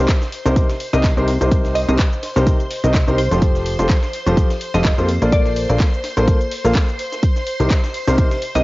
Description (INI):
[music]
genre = piano house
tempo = 126 BPM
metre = 4/4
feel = swing 56% on 16ths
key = C dorian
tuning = A4 = 440 Hz
[part]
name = string machine, violins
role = sustained chords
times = 0.0-8.6 s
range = C5 to C6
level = -29 LUFS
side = equal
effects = ensemble chorus, vintage 12-bit sampler grit, sidechain pumping
[part]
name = warm grand piano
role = riff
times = 0.0-8.6 s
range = C3 to F5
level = -20 LUFS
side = left 1 dB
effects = sidechain pumping
[part]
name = plucky analog bass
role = bass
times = 0.0-8.6 s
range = F1 to F2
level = -18 LUFS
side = equal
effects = sidechain pumping
[part]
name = breakbeat sampler-style drum kit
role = drums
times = 0.1-8.6 s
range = hi-hat, snare drum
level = -34 LUFS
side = equal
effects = none
[part]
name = electronic kick drum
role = drums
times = 0.1-8.3 s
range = none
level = -16 LUFS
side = equal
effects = overdrive, cassette tape
[part]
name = house drum kit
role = drums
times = 0.1-8.6 s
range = cabasa, handclaps, hi-hat, rim click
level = -28 LUFS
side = equal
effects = overdrive, cassette tape
[part]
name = glassy wavetable pluck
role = melody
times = 0.9-8.6 s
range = C5 to Eb5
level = -25 LUFS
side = equal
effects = chorus, cassette tape, tape echo
[sound]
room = light reverb, digital ambience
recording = home recording on cassette, nothing above 7.5 kHz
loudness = -15 LUFS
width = side -20 dB against mid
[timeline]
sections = 0.0-8.6 A section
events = none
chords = 0.0 Cm7; 3.2 Fadd9; 5.1 Bbmaj7; 7.2 Cm7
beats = 0.09 0.56 1.04 | 1.51 1.99 2.47 2.94 | 3.42 3.90 4.37 4.85 | 5.32 5.80 6.28 6.75 | 7.23 7.71 8.18